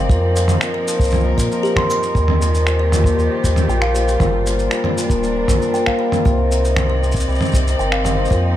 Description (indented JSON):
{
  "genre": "folktronica",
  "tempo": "117 BPM",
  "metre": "4/4",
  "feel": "straight",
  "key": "C minor",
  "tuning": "A4 = 441 Hz",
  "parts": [
    { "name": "rich string quartet", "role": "sustained chords", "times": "0.0-8.6 s", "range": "C3 to D5", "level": "-26 LUFS", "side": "right 2 dB", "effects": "vintage 12-bit sampler grit" },
    { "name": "cimbalom", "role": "arpeggios", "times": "0.0-8.6 s", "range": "Bb2 to G3", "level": "-20 LUFS", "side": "left 2 dB", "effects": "digital delay" },
    { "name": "warm sub bass", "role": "bass", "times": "0.0-8.6 s", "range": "D1 to Bb2", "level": "-18 LUFS", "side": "equal", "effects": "none" },
    { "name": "music box", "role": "second line", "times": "0.1-8.4 s", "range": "G4 to C6", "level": "-26 LUFS", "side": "equal", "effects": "tape echo" },
    { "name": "kick drum", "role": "drums", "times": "0.1-8.4 s", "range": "none", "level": "-18 LUFS", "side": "equal", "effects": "none" },
    { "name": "lo-fi sampler-style drum kit", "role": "drums", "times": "0.1-8.4 s", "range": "cabasa, finger snaps, toms", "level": "-22 LUFS", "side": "right 1 dB", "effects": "none" }
  ],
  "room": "light reverb, small room ambience",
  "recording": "none",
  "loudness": "-14 LUFS",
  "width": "side -12 dB against mid",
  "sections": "0.0-8.6 A section",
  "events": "none",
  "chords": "0.1 F7sus4; 2.2 Ebadd9; 4.2 Gm7; 6.3 Cmadd9"
}